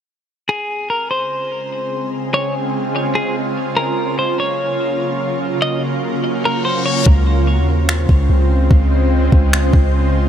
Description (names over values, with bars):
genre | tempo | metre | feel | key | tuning
hip hop, atmospheric cloud-rap | 146 BPM | 4/4 | half-time | Db major | A4 = 440 Hz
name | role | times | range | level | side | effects
clean electric guitar | melody | 0.5-7.1 s | Ab4 to Eb5 | -21 LUFS | left 1 dB | low-pass filter, digital delay
shimmering ambient pad | sustained chords | 1.3-10.3 s | Db3 to C5 | -19 LUFS | right 1 dB | chorus, built-in reverb, sidechain pumping
reverse cymbal | sound effects | 6.4-7.1 s | none | -25 LUFS | left 8 dB | none
long sustained 808-style bass | bass | 7.1-10.3 s | Db2 to Eb2 | -14 LUFS | equal | none
smooth R&B drum kit | drums | 7.1-9.8 s | finger snaps, kick drum | -13 LUFS | equal | none
room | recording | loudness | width
light reverb, digital ambience | none | -14 LUFS | side -9 dB against mid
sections
0.5-7.1 A section; 7.1-10.3 B section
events
reverse cymbal 6.4-7.1; hi-hats muted 7.1-10.3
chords
0.5 Dbmaj7; 3.8 Gbmaj7; 7.1 Dbmaj7